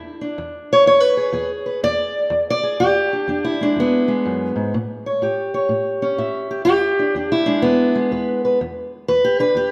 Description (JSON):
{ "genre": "acoustic country blues, solo or duo", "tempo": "124 BPM", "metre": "4/4", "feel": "swing 66% on 8ths", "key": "E mixolydian", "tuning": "A4 = 442 Hz", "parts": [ { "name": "fingerpicked steel-string acoustic guitar", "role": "solo", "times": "0.0-9.7 s", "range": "E2 to E5", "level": "-19 LUFS", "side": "equal", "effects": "none" } ], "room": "wet concert hall reverb, RT60 2.3 s", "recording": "none", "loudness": "-19 LUFS", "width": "mono", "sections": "0.0-2.8 A section; 2.8-9.7 B section", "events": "steel-string acoustic guitar solo 0.0-2.8", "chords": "0.0 E7; 4.7 A7; 6.7 E7", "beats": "0.38 | 0.86 1.34 1.83 2.31 | 2.79 3.28 3.76 4.25 | 4.73 5.21 5.70 6.18 | 6.67 7.15 7.63 8.11 | 8.60 9.08 9.56" }